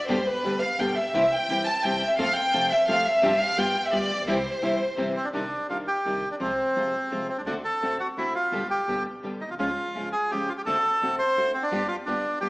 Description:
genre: tango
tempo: 170 BPM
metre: 3/4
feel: rubato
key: C major, C harmonic minor from 5.3 s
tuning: A4 = 443 Hz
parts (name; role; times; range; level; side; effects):
- warm chamber violin section; second line; 0.0-5.1 s; B4 to A5; -23 LUFS; equal; none
- nylon-string guitar; accompaniment; 0.1-12.5 s; B2 to G4; -30 LUFS; equal; none
- clear studio string section; stabs; 0.1-12.5 s; Ab3 to A4; -37 LUFS; equal; none
- upright bass; bass; 0.1-12.5 s; G1 to F2; -42 LUFS; equal; none
- bandoneon; melody; 5.2-12.5 s; C4 to C5; -25 LUFS; equal; none
room: wet stone room reverb, RT60 1.4 s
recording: band playing live in one room, small speaker sound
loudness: -23 LUFS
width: side -22 dB against mid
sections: 0.0-5.3 A section; 5.3-12.5 B section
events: violin section solo 0.0-5.3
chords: 0.1 G; 1.1 C; 2.2 F; 3.2 G7sus4; 3.6 G7; 4.3 C; 5.3 Cmadd9; 6.4 Fm/C; 7.5 D7; 8.5 G; 9.6 Db; 10.7 D7; 11.7 G7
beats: | 0.09 0.44 0.79 | 1.15 1.50 1.85 | 2.20 2.54 2.89 | 3.23 3.58 3.93 | 4.28 4.63 4.98 | 5.34 5.70 6.06 | 6.41 6.76 7.12 | 7.47 7.82 8.17 | 8.52 8.88 9.24 | 9.60 9.95 10.31 | 10.67 11.02 11.37 | 11.72 12.07 12.42

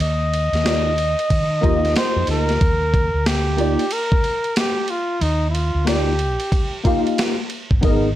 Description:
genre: hip hop, jazz-hop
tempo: 92 BPM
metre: 4/4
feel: swing 63% on 16ths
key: Eb major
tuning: A4 = 438 Hz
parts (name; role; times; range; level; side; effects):
- mellow flugelhorn; melody; 0.0-6.8 s; Eb4 to Eb5; -22 LUFS; equal; slapback echo
- mellow fretless electric bass; bass; 0.0-8.2 s; G1 to Eb3; -21 LUFS; equal; ensemble chorus
- boom bap sampler-style drum kit; drums; 0.0-8.0 s; hi-hat, kick drum, ride cymbal, snare drum; -21 LUFS; equal; none
- mellow tine electric piano; accompaniment; 0.6-8.1 s; Bb3 to F5; -21 LUFS; left 1 dB; ensemble chorus
room: moderate studio reverb, RT60 0.6 s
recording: none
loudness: -17 LUFS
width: side -13 dB against mid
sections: 0.0-2.6 A section; 2.6-8.2 B section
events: none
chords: 0.0 Ebmaj9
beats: | 0.00 0.65 1.30 1.96 | 2.61 3.26 3.91 4.56 | 5.22 5.87 6.52 7.17 | 7.82

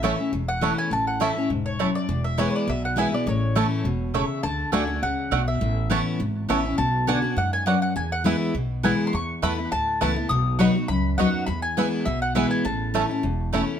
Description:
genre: bluegrass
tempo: 204 BPM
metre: 4/4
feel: straight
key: A major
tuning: A4 = 440 Hz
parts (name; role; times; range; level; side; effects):
- bluegrass banjo; melody; 0.0-13.6 s; A3 to F#4; -30 LUFS; right 6 dB; none
- mandolin; melody; 0.0-13.5 s; C#5 to D#6; -28 LUFS; left 1 dB; none
- picked steel-string acoustic guitar; accompaniment; 0.0-13.8 s; E2 to F#4; -25 LUFS; left 2 dB; none
- mandolin; stabs; 0.0-13.6 s; A3 to B5; -29 LUFS; right 7 dB; tape echo
- upright bass; bass; 0.0-13.6 s; E1 to F#2; -28 LUFS; right 1 dB; none
room: moderate studio reverb, RT60 0.7 s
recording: none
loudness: -21 LUFS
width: side -8 dB against mid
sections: 0.0-4.4 A section; 4.4-13.8 B section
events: none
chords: 0.0 A; 2.1 E; 3.3 A; 4.4 D; 5.6 Aadd9; 6.8 Bm; 8.0 E; 9.1 Esus4; 10.3 B; 11.5 E; 12.7 A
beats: 0.03 0.33 0.62 | 0.92 1.21 1.50 1.80 | 2.09 2.38 2.68 2.97 | 3.27 3.56 3.85 4.15 | 4.44 4.73 5.03 5.32 | 5.61 5.91 6.20 6.50 | 6.79 7.08 7.38 7.67 | 7.96 8.26 8.55 8.84 | 9.14 9.43 9.72 10.02 | 10.31 10.60 10.90 11.19 | 11.48 11.78 12.07 12.36 | 12.66 12.95 13.24 13.54

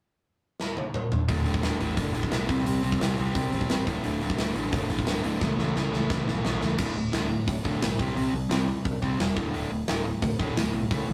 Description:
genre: punk rock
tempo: 174 BPM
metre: 4/4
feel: straight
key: unclear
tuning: A4 = 440 Hz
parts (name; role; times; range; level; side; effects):
- big rock drum kit; drums; 0.6-11.0 s; crash cymbal, hi-hat, kick drum, snare drum, toms; -31 LUFS; equal; none
- biting overdriven guitar; riff; 1.3-11.1 s; D2 to C4; -33 LUFS; equal; none
- sludgy distorted guitar; riff; 1.3-11.1 s; D2 to C4; -34 LUFS; equal; overdrive
- modern bright picked electric bass; bass; 1.3-11.1 s; D1 to C#2; -35 LUFS; equal; none
room: light reverb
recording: rough rehearsal-room recording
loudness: -27 LUFS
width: mono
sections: 0.0-1.3 A section; 1.3-6.8 B section; 6.8-11.1 C section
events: drum fill 0.6-1.3, 5.4-6.8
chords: 0.0 N.C.; 1.3 D5; 2.5 C5; 3.9 D5; 5.4 A/C#; 6.8 D5; 8.0 C5; 9.4 D5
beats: 0.25 0.59 0.94 | 1.28 1.63 1.97 2.32 | 2.66 3.01 3.35 3.69 | 4.04 4.38 4.73 5.07 | 5.42 5.76 6.11 6.45 | 6.79 7.14 7.48 7.82 | 8.16 8.51 8.85 9.19 | 9.54 9.88 10.22 10.56 | 10.91

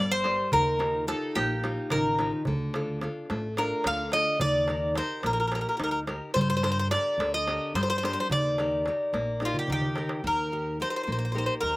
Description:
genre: greek folk, Greek bouzouki band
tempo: 216 BPM (eighths)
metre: 7/8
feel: straight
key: unclear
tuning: A4 = 436 Hz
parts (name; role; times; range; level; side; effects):
- Greek bouzouki; melody; 0.0-11.8 s; F4 to F5; -27 LUFS; equal; slapback echo
- nylon-string guitar; accompaniment; 0.0-11.8 s; D3 to D5; -32 LUFS; left 1 dB; slapback echo
- upright bass; bass; 0.0-11.8 s; G1 to G2; -34 LUFS; equal; none
- darbuka; percussion; 0.2-10.2 s; none; -33 LUFS; right 1 dB; none
room: little or no reverb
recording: recorded outdoors, with no room sound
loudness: -25 LUFS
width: side -20 dB against mid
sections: 0.0-10.2 A section; 10.2-11.8 B section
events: drum fill 9.5-10.2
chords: 0.0 Gm; 0.5 Ebadd9; 2.5 Dm; 4.4 Eb; 6.4 Gm; 8.3 Eb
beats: 0.25 | 0.53 0.81 1.08 1.36 1.64 1.92 2.20 | 2.48 2.75 3.03 3.31 3.59 3.86 4.14 | 4.42 4.70 4.97 5.25 5.53 5.81 6.08 | 6.36 6.64 6.92 7.19 7.47 7.75 8.03 | 8.30 8.58 8.86 9.13 9.41 9.69 9.96 | 10.24 10.52 10.80 11.07 11.35 11.63

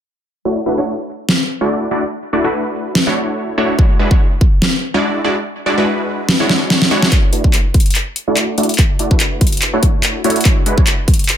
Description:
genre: future bass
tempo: 144 BPM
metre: 4/4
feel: swing 55% on 16ths, half-time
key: unclear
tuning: A4 = 441 Hz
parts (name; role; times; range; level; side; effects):
- supersaw stab; riff; 0.5-10.9 s; G#3 to D5; -17 LUFS; equal; sidechain pumping, low-pass filter, tape echo
- dubstep drum kit; drums; 1.3-11.4 s; handclaps, hi-hat, snare drum; -16 LUFS; equal; overdrive, high-pass filter on snare, high-pass filter on hats, high-pass filter on room
- electronic kick drum; drums; 3.8-4.5, 7.1-11.2 s; none; -12 LUFS; equal; overdrive
room: light reverb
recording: none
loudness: -13 LUFS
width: side -10 dB against mid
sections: 0.5-7.1 A section; 7.1-11.4 B section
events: filter sweep on supersaw synth 0.5-7.1; kick drops out 5.5-7.1; drum fill 6.5-7.1, 7.1-11.4; build-up 7.1-11.4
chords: 0.5 Dmaj9; 3.8 E13; 7.1 Dmaj9; 10.5 E13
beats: | 0.45 0.87 1.29 1.70 | 2.12 2.54 2.95 3.37 | 3.79 4.20 4.62 5.04 | 5.45 5.87 6.29 6.70 | 7.12 7.54 7.95 8.37 | 8.79 9.20 9.62 10.04 | 10.45 10.87 11.29

